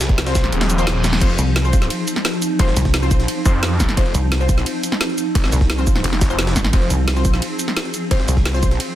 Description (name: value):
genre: dark technical drum and bass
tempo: 174 BPM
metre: 4/4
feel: straight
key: F minor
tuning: A4 = 440 Hz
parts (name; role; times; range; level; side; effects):
- swarming drone; sustained chords; 0.0-9.0 s; F3 to Ab4; -25 LUFS; equal; built-in reverb, sidechain pumping
- snarling distorted saw bass; bass; 0.0-8.3 s; Eb1 to F2; -20 LUFS; equal; none
- drum and bass drum kit; drums; 0.0-8.9 s; cabasa, crash cymbal, hi-hat, ride cymbal, snare drum; -23 LUFS; right 1 dB; none
- jungle sampler-style drum kit; drums; 0.0-8.9 s; hi-hat, snare drum; -31 LUFS; equal; none
- electronic kick drum; drums; 0.1-8.7 s; none; -17 LUFS; equal; none
- orchestra-hit-like synth stab; stabs; 0.3-9.0 s; C4 to C5; -27 LUFS; left 3 dB; built-in reverb, dub echo
- reverse cymbal; sound effects; 0.7-1.2 s; none; -30 LUFS; right 2 dB; none
- pulsing pluck wobble bass; bass; 1.4-8.8 s; Ab1 to C2; -18 LUFS; equal; chorus
room: light reverb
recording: dense, heavily limited modern master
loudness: -15 LUFS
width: side -13 dB against mid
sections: 0.0-9.0 A section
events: kick drops out 0.5-1.2; reverse cymbal 0.7-1.2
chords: 0.0 F5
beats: 0.18 0.52 0.87 | 1.21 1.56 1.90 2.25 | 2.59 2.94 3.28 3.63 | 3.97 4.32 4.66 5.01 | 5.35 5.70 6.04 6.39 | 6.73 7.08 7.42 7.77 | 8.11 8.46 8.80